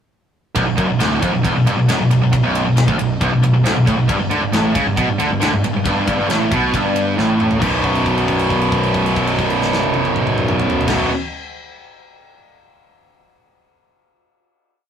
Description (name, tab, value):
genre	heavy metal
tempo	136 BPM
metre	4/4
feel	straight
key	B minor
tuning	A4 = 440 Hz
part	heavy high-gain guitar	riff	0.6-11.1 s	B1 to D3	-21 LUFS	left 6 dB	distortion
part	tight distorted guitar	riff	0.6-11.1 s	B1 to D3	-16 LUFS	right 3 dB	distortion
part	fuzz picked electric bass	bass	0.6-11.1 s	B0 to D2	-25 LUFS	left 1 dB	overdrive
part	tight metal drum kit	drums	0.6-11.0 s	crash cymbal, kick drum, ride cymbal, snare drum, toms	-23 LUFS	left 1 dB	none
room	wet small room ambience, RT60 0.5 s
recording	rough rehearsal-room recording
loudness	-14 LUFS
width	side -8 dB against mid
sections	0.6-7.6 riff; 7.6-11.1 final chord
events	drum fill 7.2-7.6; held note 7.6-10.9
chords	0.6 Bm; 4.1 G5; 7.6 B5